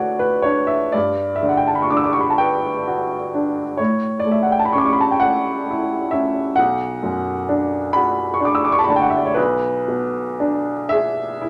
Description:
classical, romantic nocturne for solo piano; 38-45 BPM (dotted quarters); 12/8; rubato; A4 = 440 Hz
warm upright piano; solo; 0.0-11.5 s; B1 to E6; -19 LUFS; equal
moderate studio reverb, RT60 0.6 s; -19 LUFS; mono
0.0-11.5 A section
0.0 D; 0.9 Gmaj7; 3.8 A; 6.6 Bm; 9.4 E7/B
0.94 2.40 | 3.80 5.21 6.57 7.96 | 9.37 10.91

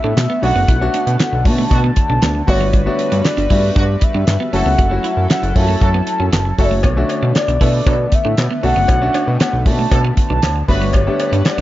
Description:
early-eighties boogie funk; 117 BPM; 4/4; straight; A4 = 440 Hz
mellow horn-like synth lead; melody; 0.0-11.6 s; C#5 to A5; -20 LUFS; equal; chorus
clear grand piano; accompaniment; 0.0-11.6 s; A3 to A4; -23 LUFS; left 2 dB
chorused pulse-width pad; sustained chords; 0.0-11.6 s; D3 to F#5; -26 LUFS; left 1 dB
clean electric guitar; riff; 0.0-11.6 s; G3 to F#4; -26 LUFS; right 6 dB; tube saturation, lush chorus
fat analog bass; bass; 0.0-11.6 s; F#1 to B2; -17 LUFS; equal
damped 70s drum kit; drums; 0.2-11.6 s; handclaps, hi-hat, kick drum, snare drum; -17 LUFS; equal
warm horn section; second line; 0.4-10.8 s; D3 to B4; -26 LUFS; right 1 dB
cowbell; percussion; 6.8-11.6 s; -27 LUFS; left 3 dB
small room ambience; nothing above 7.5 kHz; -13 LUFS; side -15 dB against mid
0.0-11.6 A section
0.0 Bm7; 2.5 Gmaj7; 4.5 F#m7; 6.8 Bm7; 10.7 Gmaj7
0.17 | 0.69 1.20 1.71 2.22 | 2.74 3.25 3.76 4.28 | 4.79 5.30 5.81 6.33 | 6.84 7.35 7.86 8.38 | 8.89 9.40 9.92 10.43 | 10.94 11.45

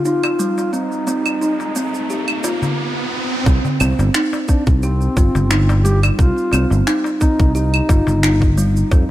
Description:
organic downtempo; 88 BPM; 4/4; swing 54% on 16ths; C minor; A4 = 440 Hz
dark duduk; melody; 0.0-8.5 s; C4 to G4; -23 LUFS; equal; vintage 12-bit sampler grit, tape echo
kalimba; arpeggios; 0.0-9.1 s; G3 to G4; -21 LUFS; equal; low-pass filter, ping-pong delay
riser; sound effects; 0.1-3.5 s; -26 LUFS; right 2 dB
electronic cabasa, claves and finger snaps; drums; 0.1-9.1 s; -23 LUFS; right 1 dB; overdrive
darbuka; percussion; 0.2-8.5 s; -25 LUFS; left 2 dB
sustaining fretless electric bass; bass; 3.5-9.0 s; G1 to F2; -16 LUFS; equal; sidechain pumping
electronic kick drum; drums; 3.5-9.1 s; -14 LUFS; equal; overdrive
light reverb; -14 LUFS; side -14 dB against mid
0.0-3.5 A section; 3.5-9.1 B section
riser 0.1-3.5
0.0 Cm
0.05 | 0.73 1.42 2.10 2.78 | 3.46 4.14 4.83 5.51 | 6.19 6.87 7.55 8.23 | 8.91

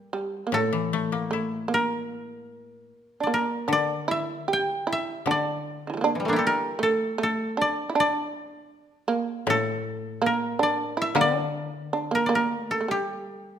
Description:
japanese traditional, Japanese chamber music; 78 BPM; 4/4; uneven beats, rubato; G kumoi; A4 = 445 Hz
koto; melody; 0.0-13.6 s; E3 to G5; -26 LUFS; equal
shamisen; second line; 0.0-13.6 s; D3 to G4; -27 LUFS; right 3 dB
koto; accompaniment; 0.0-13.5 s; A2 to E4; -30 LUFS; left 7 dB
wet recital hall reverb, RT60 1.6 s; minimal, uncompressed stereo recording; -23 LUFS; side -9 dB against mid
0.0-13.6 A section
| 0.53 1.31 2.09 2.89 | 3.69 4.49 5.28 6.05 | 6.80 7.57 8.35 9.10 | 9.85 10.60 11.36 12.13 | 12.90

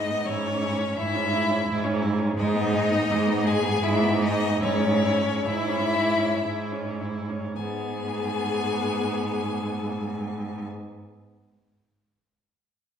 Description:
classical, slow romantic movement for string quartet; 51-87 BPM; 3/4; rubato; G# minor; A4 = 442 Hz
clear violin; melody; 0.0-10.6 s; C#5 to G#5; -29 LUFS; left 5 dB
rich violin; second line; 0.0-10.6 s; C#4 to G#4; -30 LUFS; left 2 dB
clear viola; accompaniment; 0.0-10.7 s; G#3 to E4; -32 LUFS; right 1 dB
clear cello; bass; 0.0-10.7 s; G#2; -26 LUFS; right 2 dB
wet recital hall reverb, RT60 1.4 s; heard from further back in the room; -23 LUFS; side -8 dB against mid
0.0-7.6 A section; 7.6-10.7 B section
slowing down 1.3-7.6
0.3 C#m/G#; 2.4 G#m; 4.6 C#m/G#; 7.6 G#m
| 0.27 0.98 1.68 | 2.38 3.10 3.83 | 4.61 5.46 6.44 | 7.57 8.65 9.71

